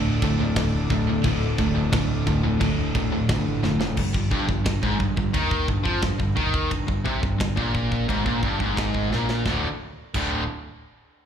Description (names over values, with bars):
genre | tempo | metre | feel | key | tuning
heavy metal | 88 BPM | 4/4 | straight | unclear | A4 = 440 Hz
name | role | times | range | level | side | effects
brassy analog pad | sustained chords | 0.0-3.9 s | D4 to D5 | -39 LUFS | right 2 dB | chorus
distorted electric guitar | riff | 0.0-10.4 s | D2 to E#3 | -27 LUFS | left 8 dB | overdrive, slapback echo
distorted electric guitar | riff | 0.0-10.4 s | D2 to E#3 | -28 LUFS | right 10 dB | overdrive
overdriven electric guitar | riff | 0.0-4.0 s | D2 to D3 | -28 LUFS | left 1 dB | slapback echo
fuzz picked electric bass | bass | 0.0-10.5 s | D1 to E#2 | -27 LUFS | equal | overdrive
tight metal drum kit | drums | 0.2-10.3 s | crash cymbal, kick drum, ride cymbal, snare drum | -27 LUFS | equal | none
room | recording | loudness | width
little or no reverb | live gig heard through the venue's PA, club reverb | -21 LUFS | side -8 dB against mid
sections
0.0-4.0 A section; 4.0-9.5 B section; 9.5-11.3 C section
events
drum fill 3.6-4.0, 9.1-9.5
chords
0.0 D5; 4.0 G#maj7sus2/G; 9.5 D5